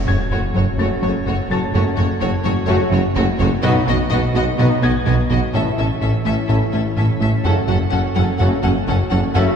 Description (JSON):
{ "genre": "cinematic, hybrid orchestral and electronic film score", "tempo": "126 BPM", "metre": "4/4", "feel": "straight", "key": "F# dorian", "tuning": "A4 = 439 Hz", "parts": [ { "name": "airy breathy pad", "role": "sustained chords", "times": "0.0-9.6 s", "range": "B3 to D#5", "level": "-28 LUFS", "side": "right 1 dB", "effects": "chorus" }, { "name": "impact", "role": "sound effects", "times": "0.0-1.7 s", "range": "none", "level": "-28 LUFS", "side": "equal", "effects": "none" }, { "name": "warm symphonic violin section", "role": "melody", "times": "0.1-9.4 s", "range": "C#5 to F#5", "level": "-27 LUFS", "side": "left 4 dB", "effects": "none" }, { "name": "warm studio violin section", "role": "second line", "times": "0.1-9.4 s", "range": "F#4 to A4", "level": "-28 LUFS", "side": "equal", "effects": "none" }, { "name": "warm symphonic viola section", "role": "accompaniment", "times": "0.1-9.4 s", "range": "A3 to C#4", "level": "-28 LUFS", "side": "left 1 dB", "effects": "none" }, { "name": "rubbery square bass", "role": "riff", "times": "0.1-9.5 s", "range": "F#2 to B3", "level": "-22 LUFS", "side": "left 2 dB", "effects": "none" }, { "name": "rich symphonic double bass section", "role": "bass", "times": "0.1-9.4 s", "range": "F#1 to B1", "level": "-22 LUFS", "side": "right 2 dB", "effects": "none" }, { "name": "warm symphonic cello section", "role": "bass", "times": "0.1-9.4 s", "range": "F#2 to B2", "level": "-22 LUFS", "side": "right 2 dB", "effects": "none" }, { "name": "warm tuba", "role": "bass", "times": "0.1-9.4 s", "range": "F#1 to B1", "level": "-26 LUFS", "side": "right 3 dB", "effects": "none" }, { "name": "warm concert grand piano", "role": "texture", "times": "0.1-9.6 s", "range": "E5 to A6", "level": "-30 LUFS", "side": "left 2 dB", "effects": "ping-pong delay" }, { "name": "mellow trombone section", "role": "sustained chords", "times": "0.8-9.5 s", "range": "C#3 to B3", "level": "-30 LUFS", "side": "right 3 dB", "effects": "none" }, { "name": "warm French horn section", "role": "sustained chords", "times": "0.8-9.5 s", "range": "B3 to F#4", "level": "-27 LUFS", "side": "left 4 dB", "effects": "none" } ], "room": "wet scoring stage reverb, RT60 2.0 s", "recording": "heard from further back in the room", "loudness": "-15 LUFS", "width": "side -7 dB against mid", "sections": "0.0-9.6 A section", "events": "impact 0.0-1.7", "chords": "0.0 F#m; 3.6 B; 5.5 A; 7.4 F#m" }